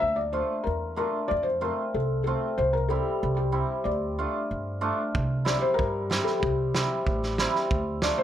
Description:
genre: klezmer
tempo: 94 BPM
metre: 2/4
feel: straight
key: unclear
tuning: A4 = 441 Hz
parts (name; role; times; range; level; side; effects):
- felt-muted upright piano; melody; 0.0-8.2 s; G4 to E5; -28 LUFS; left 3 dB; none
- upright bass; bass; 0.0-8.1 s; A1 to G2; -30 LUFS; right 1 dB; none
- cimbalom; accompaniment; 0.3-8.2 s; G3 to F4; -29 LUFS; right 1 dB; none
- loose indie drum kit; drums; 5.1-8.2 s; kick drum, snare drum; -29 LUFS; right 2 dB; none
room: light reverb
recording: none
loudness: -24 LUFS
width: side -10 dB against mid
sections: 0.0-5.1 A section; 5.1-8.2 B section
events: none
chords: 0.0 Dm; 1.3 F; 2.6 C; 3.9 Dm; 5.1 C; 7.7 Dm

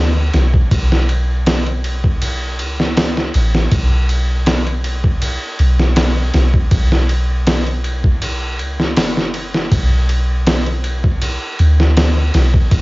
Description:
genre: trip hop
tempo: 80 BPM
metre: 4/4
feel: swing 53% on 16ths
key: B minor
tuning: A4 = 441 Hz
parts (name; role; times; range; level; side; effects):
- soft 808-style bass; bass; 0.0-12.8 s; F#1 to D2; -15 LUFS; equal; none
- trip hop sampler-style drum kit; drums; 0.3-12.8 s; hi-hat, kick drum, ride cymbal, snare drum; -16 LUFS; equal; none
room: little or no reverb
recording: home recording on cassette, nothing above 7.6 kHz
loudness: -13 LUFS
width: side -21 dB against mid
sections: 0.0-12.8 A section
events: none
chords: none

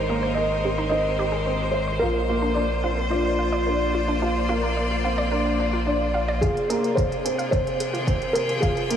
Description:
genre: piano and strings electronica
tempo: 109 BPM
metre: 4/4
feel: straight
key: F minor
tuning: A4 = 439 Hz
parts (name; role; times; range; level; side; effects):
- felt-muted upright piano; melody; 0.0-9.0 s; F4 to Eb5; -26 LUFS; equal; tape echo
- bright string quartet; sustained chords; 0.0-9.0 s; C3 to G5; -28 LUFS; left 1 dB; sidechain pumping
- round analog bass; bass; 0.0-9.0 s; F1 to Bb1; -29 LUFS; left 1 dB; sidechain pumping, high-pass filter
- wide unison pluck; arpeggios; 0.1-9.0 s; D4 to Ab5; -31 LUFS; right 2 dB; cassette tape, sidechain pumping, tape echo
- dark upright piano; riff; 0.1-9.0 s; Bb3 to F4; -28 LUFS; right 1 dB; ensemble chorus, tape echo
- electronic hi-hat; drums; 6.4-9.0 s; none; -35 LUFS; right 2 dB; none
- electronic kick drum; drums; 6.4-8.7 s; none; -25 LUFS; equal; none
room: wet huge ambient reverb, RT60 8.2 s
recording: dreamy mix soaked in reverb, studio ambience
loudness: -21 LUFS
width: side -8 dB against mid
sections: 0.0-6.4 A section; 6.4-9.0 B section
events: filter sweep on synth arpeggio sound 0.0-6.4; build-up 6.4-9.0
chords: 0.0 Ab; 2.0 Bb; 6.4 Fm

